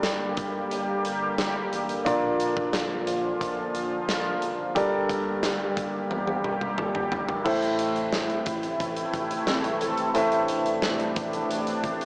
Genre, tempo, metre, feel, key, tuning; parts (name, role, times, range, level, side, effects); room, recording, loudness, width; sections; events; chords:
1980s-style pop; 89 BPM; 4/4; straight; A4 = 445 Hz
clear concert grand piano; accompaniment; 0.0-12.1 s; G2 to E5; -27 LUFS; equal; cassette tape
sweeping resonant pad; sustained chords; 0.0-12.1 s; C3 to G4; -29 LUFS; equal; chorus, cassette tape
round analog bass; bass; 0.0-12.1 s; F#1 to Bb1; -44 LUFS; equal
big rock drum kit; drums; 0.0-12.1 s; crash cymbal, hi-hat, kick drum, snare drum, toms; -31 LUFS; equal; cassette tape
mellow synth brass; stabs; 9.5-10.1 s; E3 to A4; -29 LUFS; equal; chorus, phaser, cassette tape
moderate spring reverb, RT60 1.6 s, studio ambience; home recording on cassette, small speaker sound; -24 LUFS; side -36 dB against mid
0.0-7.5 A section; 7.5-12.1 B section
drum fill 6.1-7.5
0.0 Gmadd9; 2.1 Bb; 4.8 Gmadd9; 7.5 Am